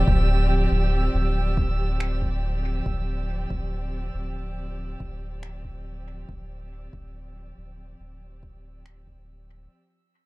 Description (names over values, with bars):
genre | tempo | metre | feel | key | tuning
ambient dub | 70 BPM | 4/4 | straight | D minor | A4 = 440 Hz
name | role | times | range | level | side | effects
dark chamber string section | sustained chords | 0.0-9.7 s | F3 to D5 | -31 LUFS | right 1 dB | none
soft dub sub bass | bass | 0.0-9.7 s | D1 | -26 LUFS | equal | none
drifting glass-harmonics texture | texture | 0.0-9.7 s | E6 | -38 LUFS | right 3 dB | chorus, built-in reverb
electronic kick drum | drums | 0.1-9.2 s | none | -27 LUFS | equal | overdrive
electronic finger snaps | drums | 2.0-9.0 s | none | -39 LUFS | right 2 dB | overdrive, dub echo
room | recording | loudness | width
digital ambience | dark, warm production | -23 LUFS | side -21 dB against mid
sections
0.0-9.7 A section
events
fade-out 0.0-9.7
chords
0.0 Dm11